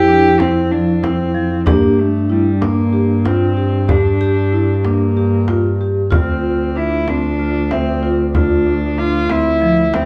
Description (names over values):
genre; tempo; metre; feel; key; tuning
contemporary instrumental, chamber music in an uneven meter; 189 BPM (eighths); 7/8; straight; D minor; A4 = 440 Hz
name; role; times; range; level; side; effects
dark cello; melody; 0.0-10.1 s; G3 to G4; -20 LUFS; equal; none
vibraphone with medium mallets; second line; 0.0-10.1 s; D4 to G4; -23 LUFS; equal; none
clear double bass; bass; 0.0-10.1 s; D2 to G2; -21 LUFS; equal; none
vibraphone with soft mallets; arpeggios; 0.1-10.1 s; F3 to E5; -22 LUFS; equal; none
frame drum; percussion; 0.4-10.1 s; none; -22 LUFS; equal; none
room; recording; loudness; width
wet studio reverb, RT60 0.7 s; heard from further back in the room; -15 LUFS; mono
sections
0.0-10.1 A section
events
none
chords
0.0 Fmaj7(no3); 1.7 Gm; 6.1 Dm7